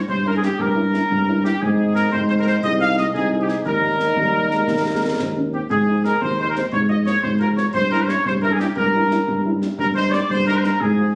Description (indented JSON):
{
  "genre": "military-style march for wind band",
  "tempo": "118 BPM (dotted quarters)",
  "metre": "6/8",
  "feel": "straight",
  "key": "unclear",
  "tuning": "A4 = 440 Hz",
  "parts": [
    { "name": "clear trumpet section", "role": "melody", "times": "0.1-11.1 s", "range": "G4 to F5", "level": "-23 LUFS", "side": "equal", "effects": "none" },
    { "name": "mellow tuba", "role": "bass", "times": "0.1-11.2 s", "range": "C2 to Ab2", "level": "-23 LUFS", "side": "equal", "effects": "none" },
    { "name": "concert bass drum and concert snare drum", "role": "drums", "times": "0.1-10.9 s", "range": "none", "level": "-32 LUFS", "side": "equal", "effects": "none" },
    { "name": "mellow French horn section", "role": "accompaniment", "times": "0.3-11.0 s", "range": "F3 to F4", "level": "-28 LUFS", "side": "equal", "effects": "none" },
    { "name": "dark euphonium", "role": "second line", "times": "4.2-5.6 s", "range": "G3 to Db4", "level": "-29 LUFS", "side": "equal", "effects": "none" }
  ],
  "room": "moderate studio reverb, RT60 0.6 s",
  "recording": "recorded on a phone in the room, studio reverb, vinyl crackle",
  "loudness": "-19 LUFS",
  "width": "mono",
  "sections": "0.0-11.2 A section",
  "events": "none",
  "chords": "0.0 Gdim7; 1.6 Ab; 2.6 Ab/C; 3.7 Eb; 5.7 Ab; 6.7 Bb5/Ab; 7.7 Gdim7; 9.8 Eb/G"
}